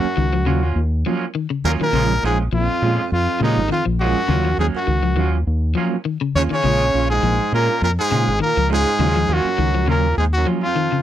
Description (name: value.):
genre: afrobeat.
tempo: 102 BPM.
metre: 4/4.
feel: swing 55% on 16ths.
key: unclear.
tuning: A4 = 440 Hz.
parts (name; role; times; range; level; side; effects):
brilliant trumpet; melody; 0.0-11.0 s; Eb4 to Db5; -21 LUFS; left 2 dB; none.
growling baritone saxophone; second line; 0.0-11.0 s; Eb2 to Db3; -26 LUFS; right 14 dB; none.
clean electric guitar; stabs; 0.0-10.7 s; F3 to F4; -24 LUFS; right 7 dB; harmonic tremolo.
fingered electric bass; bass; 0.0-10.4 s; Ab1 to Bb2; -20 LUFS; equal; none.
electric guitar at the edge of break-up; arpeggios; 0.2-11.0 s; Db3 to F3; -23 LUFS; left 7 dB; none.
trombone with metal mute; second line; 6.4-11.0 s; F3 to Db4; -29 LUFS; right 4 dB; none.
room: little or no reverb.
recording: dry, close 1970s-style studio recording.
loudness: -16 LUFS.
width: side -11 dB against mid.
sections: 0.0-11.0 A section.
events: none.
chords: 0.0 Ebm9; 1.9 Bbm7; 4.3 Ebm9; 6.6 Bbm7; 9.0 Ebm9.